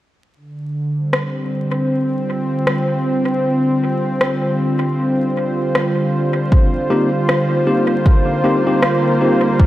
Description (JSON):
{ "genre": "ambient dub", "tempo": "78 BPM", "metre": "4/4", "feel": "swing 59% on 16ths", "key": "C minor", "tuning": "A4 = 439 Hz", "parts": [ { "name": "warm analog pad", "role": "sustained chords", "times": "0.5-9.7 s", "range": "D3 to C5", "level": "-17 LUFS", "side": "equal", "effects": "chorus" }, { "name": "electronic rim click", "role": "drums", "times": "1.1-9.0 s", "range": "none", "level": "-22 LUFS", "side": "left 1 dB", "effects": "overdrive, dub echo" }, { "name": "electronic kick drum", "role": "drums", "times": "6.5-9.7 s", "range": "none", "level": "-11 LUFS", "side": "equal", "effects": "overdrive" }, { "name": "tine electric piano", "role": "stabs", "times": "6.9-9.5 s", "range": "Bb3 to G4", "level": "-18 LUFS", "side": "left 2 dB", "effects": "dub echo" } ], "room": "light reverb, digital ambience", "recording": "vinyl crackle", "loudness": "-15 LUFS", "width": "side -14 dB against mid", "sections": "0.4-9.7 A section", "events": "none", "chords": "0.4 C7(no3)" }